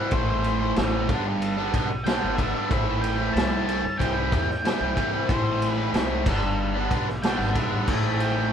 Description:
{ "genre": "classic rock", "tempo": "93 BPM", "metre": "4/4", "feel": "straight", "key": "A minor", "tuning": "A4 = 441 Hz", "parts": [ { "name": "octave-fuzz lead guitar", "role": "melody", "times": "0.0-8.5 s", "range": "C5 to A5", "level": "-31 LUFS", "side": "left 1 dB", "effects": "distortion" }, { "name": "distorted electric guitar", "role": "riff", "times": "0.0-8.5 s", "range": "G2 to E4", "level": "-26 LUFS", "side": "equal", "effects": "overdrive" }, { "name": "upright bass", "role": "bass", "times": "0.1-8.5 s", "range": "G1 to G2", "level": "-29 LUFS", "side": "equal", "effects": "none" }, { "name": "vintage drum kit", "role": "drums", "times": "0.1-8.4 s", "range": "crash cymbal, kick drum, ride cymbal, snare drum", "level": "-27 LUFS", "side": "equal", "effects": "none" } ], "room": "light reverb", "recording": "band playing live in one room", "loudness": "-22 LUFS", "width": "side -8 dB against mid", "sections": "0.0-8.5 A section", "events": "none", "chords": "0.1 Am; 1.1 G; 2.7 Am; 4.0 C; 5.3 Am; 6.3 G; 7.9 Am", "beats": "| 0.11 0.76 1.41 2.05 | 2.70 3.35 3.99 4.64 | 5.29 5.93 6.58 7.23 | 7.88 8.52" }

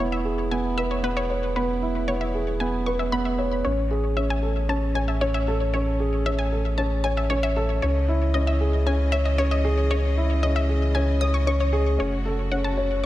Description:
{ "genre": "piano and strings electronica", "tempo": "115 BPM", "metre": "4/4", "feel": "straight", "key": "C# minor", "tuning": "A4 = 440 Hz", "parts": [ { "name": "rich studio string section", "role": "sustained chords", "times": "0.0-13.1 s", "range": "A2 to D#5", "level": "-37 LUFS", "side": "equal", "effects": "none" }, { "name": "wide unison pluck", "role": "arpeggios", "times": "0.0-13.1 s", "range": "B4 to D#6", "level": "-30 LUFS", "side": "left 1 dB", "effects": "digital delay" }, { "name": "dark grand piano", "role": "riff", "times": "0.0-13.1 s", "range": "B3 to C#5", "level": "-25 LUFS", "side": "equal", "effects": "low-pass filter, digital delay" }, { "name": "warm sub bass", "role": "bass", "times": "0.0-13.1 s", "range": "E1 to C#2", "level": "-24 LUFS", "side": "equal", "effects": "none" } ], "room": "light reverb, small room ambience", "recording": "none", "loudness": "-21 LUFS", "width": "side -14 dB against mid", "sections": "0.0-13.1 A section", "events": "fade-in on string section 0.0-13.1; filter sweep on grand piano 0.0-13.1", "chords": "0.0 E6; 3.7 Amaj7; 7.8 C#madd9; 12.0 F#m", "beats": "0.00 0.52 1.04 | 1.56 2.09 2.61 3.13 | 3.65 4.17 4.70 5.22 | 5.74 6.26 6.78 7.30 | 7.83 8.35 8.87 9.39 | 9.91 10.43 10.96 11.48 | 12.00 12.52 13.04" }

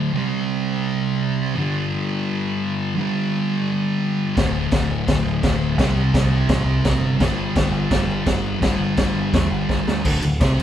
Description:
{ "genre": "garage rock duo or trio", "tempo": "170 BPM", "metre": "4/4", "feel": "straight", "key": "unclear", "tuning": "A4 = 440 Hz", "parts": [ { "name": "fuzz guitar", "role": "riff", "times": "0.0-10.6 s", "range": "D2 to C4", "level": "-20 LUFS", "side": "equal", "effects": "distortion" }, { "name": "growling picked electric bass", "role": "bass", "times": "4.4-10.6 s", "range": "D1 to E2", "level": "-24 LUFS", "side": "equal", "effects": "overdrive" }, { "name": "raw garage drum kit", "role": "drums", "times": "4.4-10.6 s", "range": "crash cymbal, kick drum, ride cymbal, snare drum", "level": "-21 LUFS", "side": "equal", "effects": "none" } ], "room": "wet stone room reverb, RT60 1.0 s", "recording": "band playing live in one room", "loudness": "-18 LUFS", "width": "side -10 dB against mid", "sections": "0.0-10.0 A section", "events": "drum fill 9.7-10.0", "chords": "0.1 C5; 1.6 G5; 4.4 D5; 5.8 C5; 7.2 G5; 10.0 D5", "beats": "| 0.15 0.50 0.85 1.20 | 1.56 1.91 2.26 2.61 | 2.96 3.32 3.67 4.02 | 4.37 4.73 5.08 5.43 | 5.79 6.14 6.49 6.85 | 7.20 7.55 7.91 8.27 | 8.62 8.98 9.33 9.69 | 10.05 10.40" }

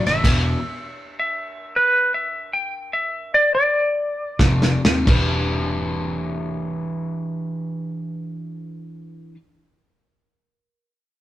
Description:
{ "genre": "electric blues shuffle", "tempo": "86-108 BPM", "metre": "4/4", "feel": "swing 68% on 8ths", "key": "E minor", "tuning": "A4 = 440 Hz", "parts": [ { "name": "clean lap steel guitar", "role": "melody", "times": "0.0-4.8 s", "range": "B4 to G5", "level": "-19 LUFS", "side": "equal", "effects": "none" }, { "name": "overdriven semi-hollow guitar", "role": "riff", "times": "0.0-0.6, 4.4-9.4 s", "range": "E2 to B4", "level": "-25 LUFS", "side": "left 1 dB", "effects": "none" }, { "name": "vintage muted fingered electric bass", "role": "bass", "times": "0.1-0.5, 4.4-9.3 s", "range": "E1 to D#2", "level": "-24 LUFS", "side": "right 1 dB", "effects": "none" }, { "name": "warm soul drum kit", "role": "drums", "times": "0.1-0.4, 4.4-5.3 s", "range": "crash cymbal, kick drum, ride cymbal, snare drum", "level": "-20 LUFS", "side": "equal", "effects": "none" } ], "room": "moderate stone room reverb, RT60 1.0 s", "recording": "rough rehearsal-room recording", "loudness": "-19 LUFS", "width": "side -14 dB against mid", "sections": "0.0-5.1 A section; 5.1-7.8 B section", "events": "slowing down 0.2-5.1; drum fill 4.4-5.1", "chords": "0.2 E5; 4.4 F5; 5.1 Em7", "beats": "| 0.24 0.79 1.36 1.93 | 2.52 3.12 3.75 4.39 | 5.07 5.77 6.46 7.16" }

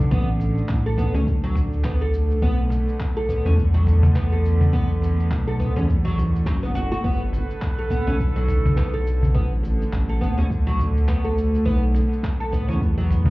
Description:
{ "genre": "organic downtempo", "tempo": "104 BPM", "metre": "4/4", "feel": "swing 58% on 16ths", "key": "B minor", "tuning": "A4 = 442 Hz", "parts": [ { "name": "rich chamber string section", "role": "sustained chords", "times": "0.0-13.3 s", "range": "D3 to B4", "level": "-29 LUFS", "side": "right 1 dB", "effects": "sidechain pumping" }, { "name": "smooth synth bass", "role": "bass", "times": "0.0-13.3 s", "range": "F#1 to E2", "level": "-21 LUFS", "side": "equal", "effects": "sidechain pumping" }, { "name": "dusty soul sampler-style drum kit", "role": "drums", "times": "0.0-13.3 s", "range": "handclaps, shaker, toms", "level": "-26 LUFS", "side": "equal", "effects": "none" }, { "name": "oud", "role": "arpeggios", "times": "0.1-13.1 s", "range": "F#3 to A4", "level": "-28 LUFS", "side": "equal", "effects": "tape echo" }, { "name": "electronic kick drum", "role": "drums", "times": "0.1-12.9 s", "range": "none", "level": "-25 LUFS", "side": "equal", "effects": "none" }, { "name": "cajon", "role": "percussion", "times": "0.4-13.3 s", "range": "none", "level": "-25 LUFS", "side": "left 1 dB", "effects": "none" } ], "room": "little or no reverb", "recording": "heard muffled through a wall, club reverb, EQ", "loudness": "-19 LUFS", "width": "side -20 dB against mid", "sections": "0.0-13.3 A section", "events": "none", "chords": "0.1 Asus4; 2.4 Bm7; 7.0 Gadd9; 9.4 Asus4; 11.7 Bm7", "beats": "| 0.12 0.70 1.27 1.85 | 2.43 3.00 3.58 4.16 | 4.74 5.31 5.89 6.47 | 7.04 7.62 8.20 8.77 | 9.35 9.93 10.50 11.08 | 11.66 12.23 12.81" }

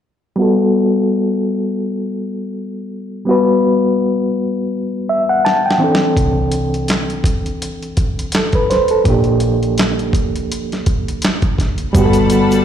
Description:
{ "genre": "R&B, neo-soul", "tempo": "83 BPM", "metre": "4/4", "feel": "swing 58% on 16ths", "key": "G major", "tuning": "A4 = 440 Hz", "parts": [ { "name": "overdriven reed electric piano", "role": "accompaniment", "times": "0.4-12.6 s", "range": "E3 to A5", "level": "-15 LUFS", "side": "equal", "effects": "fast tremolo, low-pass filter, slapback echo" }, { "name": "dusty soul sampler-style drum kit", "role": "drums", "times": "5.5-12.6 s", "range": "handclaps, hi-hat, kick drum, snare drum", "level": "-17 LUFS", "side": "equal", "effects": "none" }, { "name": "vintage muted fingered electric bass", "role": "bass", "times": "6.2-12.6 s", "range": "G1 to C2", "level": "-20 LUFS", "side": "equal", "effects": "none" }, { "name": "warm studio string section", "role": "sustained chords", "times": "11.9-12.6 s", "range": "G3 to B5", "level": "-20 LUFS", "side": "left 4 dB", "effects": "none" }, { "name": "tube shaker", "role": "percussion", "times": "12.0-12.6 s", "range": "none", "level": "-36 LUFS", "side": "left 3 dB", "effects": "none" } ], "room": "light reverb", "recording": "live gig heard through the venue's PA, recital hall reverb", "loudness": "-14 LUFS", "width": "side -9 dB against mid", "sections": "0.4-11.9 A section", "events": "filter sweep on reed electric piano 0.4-11.9; drum fill 5.4-6.2", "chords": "0.4 Gmaj9; 5.8 C69; 9.1 Bb6; 11.9 Gmaj9", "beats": "| 0.38 1.10 1.82 2.55 | 3.27 3.99 4.72 5.44 | 6.16 6.88 7.61 8.33 | 9.05 9.78 10.50 11.22 | 11.95" }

